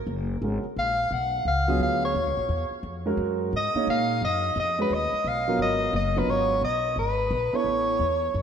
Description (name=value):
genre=modal jazz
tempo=174 BPM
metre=4/4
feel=swing 65% on 8ths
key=Eb minor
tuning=A4 = 440 Hz
part: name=upright bass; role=bass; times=0.0-8.4 s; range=Gb1 to Bb2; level=-30 LUFS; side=left 1 dB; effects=none
part: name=warm grand piano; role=accompaniment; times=0.4-8.0 s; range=Gb3 to Db5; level=-29 LUFS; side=right 3 dB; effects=wide subtle chorus
part: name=warm soprano saxophone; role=melody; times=0.8-8.4 s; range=Cb5 to Gb5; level=-25 LUFS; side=equal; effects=none
room=wet lush hall reverb, RT60 2.9 s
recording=dreamy mix soaked in reverb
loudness=-23 LUFS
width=side -8 dB against mid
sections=0.0-8.4 A section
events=none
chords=0.0 Ebm9 (rootless); 3.5 Abm9; 7.7 Aadd9